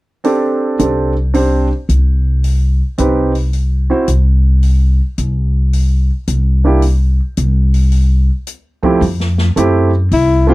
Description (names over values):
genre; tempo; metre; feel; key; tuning
jazz, small-group swing and bop; 109 BPM; 4/4; swing 67% on 8ths; unclear; A4 = 441 Hz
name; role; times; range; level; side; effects
clear upright piano; accompaniment; 0.2-10.5 s; F2 to C5; -14 LUFS; right 2 dB; none
open jazz drum kit; drums; 0.2-10.3 s; hi-hat, kick drum, snare drum; -27 LUFS; left 2 dB; none
upright bass; bass; 0.8-10.5 s; C2 to Gb2; -12 LUFS; equal; none
breathy alto saxophone; melody; 10.1-10.5 s; E4 to F4; -12 LUFS; left 3 dB; none
room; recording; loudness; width
little or no reverb; dry, close 1970s-style studio recording; -11 LUFS; side -19 dB against mid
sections
0.2-9.0 A section; 9.0-10.5 B section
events
none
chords
0.2 Csus2; 2.4 Cmmaj7; 3.5 C; 4.6 N.C.; 9.0 Fmaj9